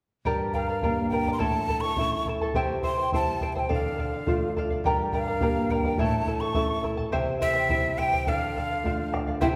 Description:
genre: andean folk, Andean ensemble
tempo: 105 BPM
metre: 2/4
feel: straight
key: D minor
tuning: A4 = 440 Hz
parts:
  - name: nylon-string guitar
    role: accompaniment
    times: 0.2-9.6 s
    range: G2 to G4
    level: -33 LUFS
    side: equal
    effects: none
  - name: charango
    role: accompaniment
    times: 0.3-9.6 s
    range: E4 to Bb5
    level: -31 LUFS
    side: equal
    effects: none
  - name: bombo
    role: percussion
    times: 0.3-9.5 s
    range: none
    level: -33 LUFS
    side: equal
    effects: none
  - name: breathy bright quena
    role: melody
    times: 0.5-9.5 s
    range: E5 to C#6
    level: -31 LUFS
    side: equal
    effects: none
  - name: mellow hollow pan flute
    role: second line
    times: 9.4-9.5 s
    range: E4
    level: -28 LUFS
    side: equal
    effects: none
room: wet recital hall reverb, RT60 1.7 s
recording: recorded in a church or concert hall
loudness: -26 LUFS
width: mono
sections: 0.2-9.4 A section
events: none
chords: 0.2 Gm; 1.4 A; 2.5 C; 3.7 Dm; 4.8 Gm; 6.0 A; 7.1 C; 8.3 Dm

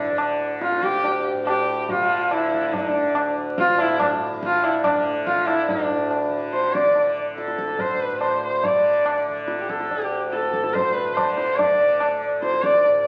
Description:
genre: indian classical, Hindustani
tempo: 142 BPM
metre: 7/4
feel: straight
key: D raga bhimpalasi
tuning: A4 = 440 Hz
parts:
  - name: warm sarangi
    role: melody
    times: 0.0-13.1 s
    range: D4 to D5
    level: -23 LUFS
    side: equal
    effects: none
  - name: tanpura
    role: drone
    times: 0.0-13.1 s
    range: D2 to D3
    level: -31 LUFS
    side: equal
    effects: none
  - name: tabla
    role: percussion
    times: 0.2-13.0 s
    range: none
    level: -30 LUFS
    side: equal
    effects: none
room: wet large studio reverb, RT60 1.4 s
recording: very old 78 rpm record, vinyl crackle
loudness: -22 LUFS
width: mono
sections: 0.0-5.7 A section; 5.7-13.1 B section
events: none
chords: none

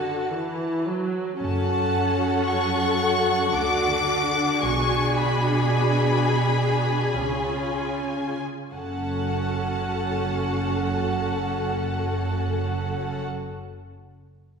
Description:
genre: classical, slow romantic movement for string orchestra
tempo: 35-57 BPM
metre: 3/4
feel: rubato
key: F# minor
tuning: A4 = 440 Hz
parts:
  - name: rich studio violin section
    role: melody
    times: 0.0-13.2 s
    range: A5 to D6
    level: -29 LUFS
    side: left 3 dB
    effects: none
  - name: warm studio violin section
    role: second line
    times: 0.0-13.2 s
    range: F#4 to G#5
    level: -27 LUFS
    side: left 2 dB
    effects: none
  - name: rich studio viola section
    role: accompaniment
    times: 0.0-13.2 s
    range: D3 to F#4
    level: -28 LUFS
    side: right 1 dB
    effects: none
  - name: clear studio cello section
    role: bass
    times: 1.4-13.2 s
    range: F#2 to D3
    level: -28 LUFS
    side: right 3 dB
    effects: none
  - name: clear studio double bass section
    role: bass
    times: 1.4-13.2 s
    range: F#1 to D2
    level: -31 LUFS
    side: right 2 dB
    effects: none
room: wet concert hall reverb, RT60 1.8 s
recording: heard from further back in the room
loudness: -22 LUFS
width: side -6 dB against mid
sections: 0.0-1.4 A section; 1.4-8.7 B section; 8.7-13.3 C section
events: slowing down 0.0-8.7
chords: 0.0 F#m; 3.5 D; 4.6 G#m7b5/B; 7.1 C#7; 8.7 F#m

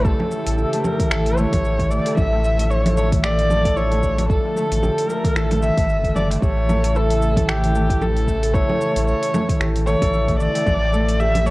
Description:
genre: organic downtempo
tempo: 113 BPM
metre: 4/4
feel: swing 57% on 16ths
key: unclear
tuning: A4 = 440 Hz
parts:
  - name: dark kamancheh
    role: melody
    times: 0.0-11.5 s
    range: G4 to E5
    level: -22 LUFS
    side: equal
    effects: tape echo
  - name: airy breathy pad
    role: sustained chords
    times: 0.0-11.5 s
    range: C#3 to A4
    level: -27 LUFS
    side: equal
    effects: chorus, sidechain pumping
  - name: concert harp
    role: arpeggios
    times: 0.0-11.5 s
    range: A3 to A4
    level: -26 LUFS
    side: equal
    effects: digital delay
  - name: warm sub bass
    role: bass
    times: 0.0-11.5 s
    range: G1 to A1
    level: -21 LUFS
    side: equal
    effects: sidechain pumping
  - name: electronic kick drum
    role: drums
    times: 0.0-10.8 s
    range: none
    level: -22 LUFS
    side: equal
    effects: small room ambience
  - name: deep house drum kit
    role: drums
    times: 0.1-11.5 s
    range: congas, finger snaps, hi-hat, shaker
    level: -26 LUFS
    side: right 1 dB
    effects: small room ambience
  - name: darbuka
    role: percussion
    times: 0.2-11.5 s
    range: none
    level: -28 LUFS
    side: right 1 dB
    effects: none
room: moderate digital room reverb, RT60 1.1 s, small room ambience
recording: worn, warbling old tape, cassette tape, warbly pitch drift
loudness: -16 LUFS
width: side -20 dB against mid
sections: 0.0-11.5 A section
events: none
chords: 0.0 A; 2.2 Dm/A; 6.4 A; 10.7 Dm/A

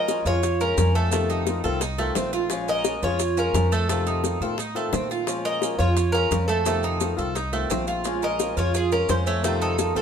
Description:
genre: latin, Cuban son and guajira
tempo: 173 BPM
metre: 4/4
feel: straight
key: Bb minor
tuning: A4 = 440 Hz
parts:
  - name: Cuban tres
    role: melody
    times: 0.0-10.0 s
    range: Ab4 to Eb5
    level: -26 LUFS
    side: equal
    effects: none
  - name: fingerpicked swing-style acoustic guitar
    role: accompaniment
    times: 0.0-10.0 s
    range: C3 to F4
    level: -29 LUFS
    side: left 5 dB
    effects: none
  - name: Cuban tres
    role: arpeggios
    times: 0.0-10.0 s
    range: A3 to Bb4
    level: -28 LUFS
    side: right 5 dB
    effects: none
  - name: bongos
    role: percussion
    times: 0.1-10.0 s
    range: none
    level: -30 LUFS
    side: left 6 dB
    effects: none
  - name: maracas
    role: percussion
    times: 0.1-10.0 s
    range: none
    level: -35 LUFS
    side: right 7 dB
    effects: none
  - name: upright bass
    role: bass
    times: 0.3-10.0 s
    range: Bb1 to Bb2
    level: -26 LUFS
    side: equal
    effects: none
room: moderate studio reverb, RT60 0.9 s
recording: minimal, uncompressed stereo recording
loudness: -21 LUFS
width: side -7 dB against mid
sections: 0.0-10.0 A section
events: none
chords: 0.0 Bbm7; 1.1 F7; 2.5 Bbm7; 3.9 F7; 5.3 Bbm7; 6.7 F7; 8.1 Bbm7; 9.4 F7

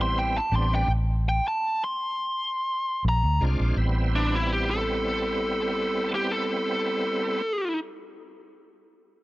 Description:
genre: straight-eighth soul blues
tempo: 83 BPM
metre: 4/4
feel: straight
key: A minor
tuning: A4 = 442 Hz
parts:
  - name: biting lead guitar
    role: melody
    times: 0.0-7.8 s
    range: D4 to C6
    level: -26 LUFS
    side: equal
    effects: overdrive
  - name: bright tonewheel organ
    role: accompaniment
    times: 0.0-7.4 s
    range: G3 to F4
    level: -30 LUFS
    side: right 2 dB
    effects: slow rotary speaker, overdrive, chorus vibrato
  - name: vintage muted fingered electric bass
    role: bass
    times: 0.0-7.6 s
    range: A1 to D2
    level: -25 LUFS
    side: equal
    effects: none
room: light reverb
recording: none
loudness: -23 LUFS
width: side -18 dB against mid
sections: 0.0-3.8 A section; 3.8-6.7 B section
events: stop 0.9-3.0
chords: 0.0 Am7; 0.9 Am; 3.0 Bb7; 3.8 Am7

